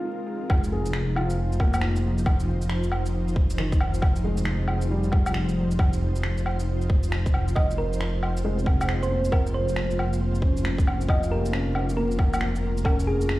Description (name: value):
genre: future garage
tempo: 136 BPM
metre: 4/4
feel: swing 64% on 16ths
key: F minor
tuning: A4 = 441 Hz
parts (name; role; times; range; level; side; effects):
- dark upright piano; accompaniment; 0.0-13.4 s; Eb3 to Ab4; -33 LUFS; left 1 dB; vintage 12-bit sampler grit, sidechain pumping, analog delay
- ethereal airy pad; sustained chords; 0.0-13.4 s; F3 to C5; -32 LUFS; equal; ensemble chorus, built-in reverb, tremolo, sidechain pumping
- dark detuned saw bass; bass; 0.5-13.4 s; F1; -26 LUFS; equal; sidechain pumping
- electronic kick drum; drums; 0.5-13.0 s; none; -21 LUFS; equal; none
- electronic woodblock, shaker and finger snaps; drums; 0.5-13.4 s; none; -32 LUFS; equal; low-pass filter on cymbals, low-pass filter on perc, low-pass filter on snare, low-pass filter on room
- thumb-piano-like synth pluck; melody; 7.6-13.4 s; Ab4 to Eb5; -32 LUFS; right 1 dB; chorus, analog delay
room: digital ambience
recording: played on a big sound system in a bare room, large studio reverb, vinyl crackle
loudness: -22 LUFS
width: side -17 dB against mid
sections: 0.5-13.4 A section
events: none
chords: 0.5 Fm7; 7.6 Bbmadd9/F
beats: 0.06 | 0.50 0.94 1.38 1.82 | 2.26 2.70 3.14 3.59 | 4.03 4.47 4.91 5.35 | 5.79 6.23 6.67 7.12 | 7.56 8.00 8.44 8.88 | 9.32 9.76 10.20 10.64 | 11.09 11.53 11.97 12.41 | 12.85 13.29